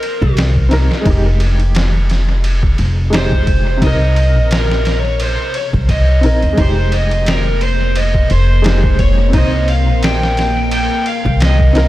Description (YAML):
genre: trip hop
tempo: 87 BPM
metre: 4/4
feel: swing 56% on 16ths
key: F minor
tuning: A4 = 440 Hz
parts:
  - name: overdriven slide guitar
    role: melody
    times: 0.0-11.9 s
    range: Bb4 to G5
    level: -20 LUFS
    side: equal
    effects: vintage 12-bit sampler grit, dub echo
  - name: felt-muted upright piano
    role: accompaniment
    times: 0.0-11.9 s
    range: C3 to C5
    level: -22 LUFS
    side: left 1 dB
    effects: tremolo, low-pass filter, dub echo
  - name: trip hop sampler-style drum kit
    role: drums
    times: 0.0-11.9 s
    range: kick drum, ride cymbal, snare drum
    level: -18 LUFS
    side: equal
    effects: overdrive, dub echo
  - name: upright bass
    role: bass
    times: 0.2-11.9 s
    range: F1 to Eb2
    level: -14 LUFS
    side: equal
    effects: none
  - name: deep dark ambient pad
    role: sustained chords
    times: 7.4-11.9 s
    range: Bb3 to Bb4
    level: -23 LUFS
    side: equal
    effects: chorus, built-in reverb
room: digital ambience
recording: echo-heavy mix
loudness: -11 LUFS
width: side -16 dB against mid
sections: 0.0-11.9 A section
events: none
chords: 0.0 Cm7; 1.1 Fm9; 3.8 Cm7; 6.6 Fm9; 9.3 Cm7